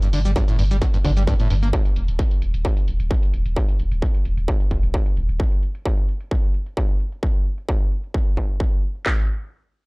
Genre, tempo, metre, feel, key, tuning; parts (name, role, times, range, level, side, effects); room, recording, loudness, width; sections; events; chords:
driving peak-time techno; 131 BPM; 4/4; straight; A4 = 439 Hz
screaming distorted acid line; riff; 0.0-1.7 s; G2 to Bb3; -25 LUFS; equal; distortion, lush chorus, sidechain pumping, tape echo
electronic hi-hat and shaker; drums; 0.0-9.0 s; -40 LUFS; equal; sidechain pumping on hats, low-pass filter on hats, sidechain pumping on perc, low-pass filter on perc, low-pass filter on room
saturated sub bass; bass; 0.1-5.4 s; Eb1 to G1; -21 LUFS; equal; tube saturation, sidechain pumping, low-pass filter
techno drum kit; drums; 0.4-9.2 s; handclaps, kick drum; -20 LUFS; equal; distortion
little or no reverb; dry, gritty hardware recording; -18 LUFS; side -30 dB against mid
0.0-9.1 A section
filter sweep on drum 0.0-9.1